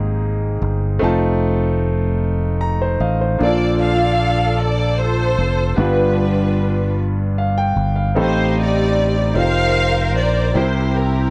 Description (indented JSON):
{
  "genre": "slow gospel",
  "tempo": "50 BPM (dotted quarters)",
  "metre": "6/8",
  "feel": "straight",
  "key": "Bb major from 3.4 s",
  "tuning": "A4 = 440 Hz",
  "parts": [
    { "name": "clear concert grand piano", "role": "accompaniment", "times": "0.0-11.3 s", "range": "G2 to Bb5", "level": "-23 LUFS", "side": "equal", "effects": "none" },
    { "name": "fingered electric bass", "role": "bass", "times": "0.0-11.3 s", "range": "F1 to C2", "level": "-21 LUFS", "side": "equal", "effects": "none" },
    { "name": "warm symphonic string section", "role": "melody", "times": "3.4-11.3 s", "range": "D4 to F5", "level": "-22 LUFS", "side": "equal", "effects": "none" }
  ],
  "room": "small room reverb",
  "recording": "dry, close 1970s-style studio recording",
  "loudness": "-18 LUFS",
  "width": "mono",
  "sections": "0.0-3.4 A section; 3.4-11.3 B section",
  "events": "grand piano fill 2.2-3.4",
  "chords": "0.0 Abmaj9; 1.0 F7; 3.4 Bbmaj7; 5.8 G7; 8.2 Am7b5; 9.4 F9sus4; 10.6 C7"
}